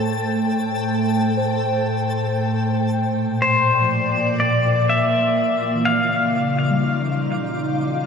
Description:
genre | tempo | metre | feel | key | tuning
ambient | 62 BPM | 3/4 | straight | Bb major | A4 = 441 Hz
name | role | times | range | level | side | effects
glassy FM pad | sustained chords | 0.0-8.1 s | A2 to G5 | -20 LUFS | equal | ensemble chorus, built-in reverb, shimmer reverb
twinkling granular texture | texture | 0.0-8.1 s | F3 to A5 | -31 LUFS | left 1 dB | built-in reverb, shimmer reverb
muted felt-like synth keys | arpeggios | 1.4-8.1 s | E3 to C5 | -29 LUFS | equal | chorus, phaser, shimmer reverb, ping-pong delay
pedal steel guitar | melody | 3.4-7.3 s | C5 to F5 | -20 LUFS | left 2 dB | shimmer reverb, ping-pong delay
room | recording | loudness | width
wet cathedral reverb, RT60 5.1 s | none | -17 LUFS | side -6 dB against mid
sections
0.0-3.0 A section; 3.0-8.1 B section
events
fade-in on synth keys 3.0-8.1; fade-in on synth texture 3.0-8.1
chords
0.0 Am7; 3.0 Bb; 5.9 Dbadd9

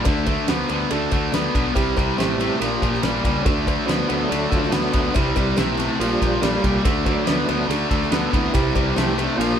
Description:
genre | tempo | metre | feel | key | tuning
classic rock | 142 BPM | 4/4 | straight | D mixolydian | A4 = 440 Hz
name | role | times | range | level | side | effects
clear upright piano | accompaniment | 0.0-9.6 s | C4 to C5 | -30 LUFS | right 5 dB | none
tonewheel organ | sustained chords | 0.0-9.6 s | E3 to D5 | -26 LUFS | right 2 dB | slow rotary speaker, overdrive, chorus vibrato
cranked stack guitar | riff | 0.0-9.6 s | Bb2 to B3 | -23 LUFS | left 6 dB | overdrive
tight distorted guitar | riff | 0.0-9.6 s | Bb2 to B3 | -26 LUFS | right 8 dB | distortion
cowbell | percussion | 0.0-9.3 s | none | -36 LUFS | left 6 dB | none
fuzz picked electric bass | bass | 0.1-9.5 s | A1 to D2 | -28 LUFS | right 1 dB | overdrive
damped 70s drum kit | drums | 0.1-9.5 s | kick drum, ride cymbal, snare drum | -24 LUFS | equal | none
room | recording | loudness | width
wet small room reverb, RT60 0.5 s | band playing live in one room | -18 LUFS | side -8 dB against mid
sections
0.0-9.6 A section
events
tonewheel organ solo 0.0-9.6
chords
0.1 D; 1.8 C; 2.6 Bb; 3.5 D; 5.2 C; 6.0 Bb; 6.9 D; 8.5 C

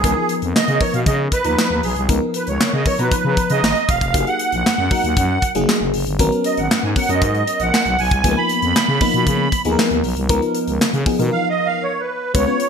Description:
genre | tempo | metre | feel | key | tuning
early-eighties boogie funk | 117 BPM | 4/4 | straight | unclear | A4 = 440 Hz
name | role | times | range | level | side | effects
musette accordion | melody | 0.0-12.7 s | G#4 to B5 | -20 LUFS | right 4 dB | none
FM electric piano with soft pad layer | accompaniment | 0.0-12.7 s | E3 to A#5 | -21 LUFS | left 2 dB | chorus, phaser
growling FM bass | bass | 0.0-12.5 s | E1 to C#3 | -21 LUFS | equal | none
modern studio drum kit | drums | 0.0-12.7 s | handclaps, hi-hat, kick drum, snare drum | -20 LUFS | equal | gated reverb
room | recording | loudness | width
moderate plate reverb, RT60 1.2 s, studio ambience | bright 1980s-style digital production | -15 LUFS | side -6 dB against mid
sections
0.0-12.3 A section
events
accordion solo 0.0-12.3; break 11.3-12.3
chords
0.0 C#13; 4.1 F#69; 6.2 G#m11; 8.2 C#13

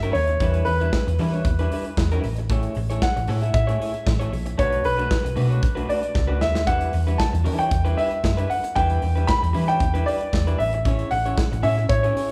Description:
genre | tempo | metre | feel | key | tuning
disco | 115 BPM | 4/4 | straight | A major | A4 = 439 Hz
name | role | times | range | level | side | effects
warm grand piano | melody | 0.0-12.3 s | B4 to B5 | -27 LUFS | equal | none
electric guitar through a small old amp | accompaniment | 0.0-12.3 s | G3 to E5 | -32 LUFS | equal | none
hollow-body short-scale fingered electric bass | bass | 0.0-12.1 s | A1 to E3 | -26 LUFS | equal | none
modern studio drum kit | drums | 0.0-12.3 s | hi-hat, kick drum, snare drum | -28 LUFS | equal | none
room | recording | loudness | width
wet large studio reverb, RT60 1.2 s | band playing live in one room | -22 LUFS | mono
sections
0.0-12.3 A section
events
drum fill 6.2-6.7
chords
0.0 Em7; 2.2 Amaj7; 4.6 Bm7; 6.7 Em7; 10.6 Amaj7

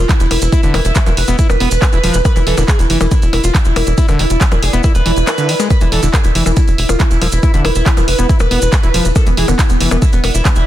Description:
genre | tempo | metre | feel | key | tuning
psychedelic trance | 139 BPM | 4/4 | straight | unclear | A4 = 440 Hz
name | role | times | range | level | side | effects
overdriven synth lead | melody | 0.0-10.6 s | B3 to B4 | -20 LUFS | equal | distortion, phaser, sidechain pumping, tape echo
tight sequencer bass | bass | 0.0-10.6 s | E1 to F1 | -15 LUFS | equal | none
ethereal airy pad | texture | 0.0-10.7 s | E4 to D5 | -24 LUFS | right 4 dB | ensemble chorus, built-in reverb, phaser, sidechain pumping
overdriven acid bass | riff | 0.1-10.5 s | D3 to E4 | -21 LUFS | moving between left 5 dB and right 5 dB | auto-pan, sidechain pumping, ping-pong delay
electronic kick drum | drums | 0.1-10.5 s | none | -12 LUFS | equal | none
techno drum kit | drums | 0.1-10.6 s | handclaps, hi-hat, percussion blips | -19 LUFS | left 1 dB | none
maracas | percussion | 0.1-10.6 s | none | -27 LUFS | right 4 dB | none
swell | sound effects | 5.0-5.7 s | none | -26 LUFS | right 3 dB | none
room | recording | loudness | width
little or no reverb | dense, heavily limited modern master | -10 LUFS | side -13 dB against mid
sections
0.0-10.7 A section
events
swell 5.0-5.7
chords
0.0 E5

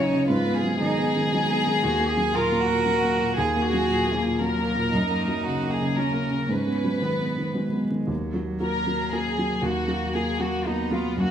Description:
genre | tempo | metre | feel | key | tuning
neoclassical piano and strings | 116 BPM | 3/4 | rubato | Eb minor | A4 = 440 Hz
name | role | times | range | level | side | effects
warm chamber violin section | melody | 0.0-11.3 s | Eb4 to Db5 | -27 LUFS | left 2 dB | none
warm cello | second line | 0.0-11.3 s | Gb3 to Bb4 | -28 LUFS | right 4 dB | none
felt-muted upright piano | accompaniment | 0.0-11.3 s | Eb2 to Gb4 | -25 LUFS | equal | none
room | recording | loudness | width
wet large studio reverb, RT60 1.1 s | band playing live in one room, vinyl crackle | -22 LUFS | side -9 dB against mid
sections
0.0-8.1 A section; 8.1-11.3 B section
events
none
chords
0.3 Abm7; 1.8 Ebm; 4.9 Gb; 6.5 Abm7; 8.1 Ebm

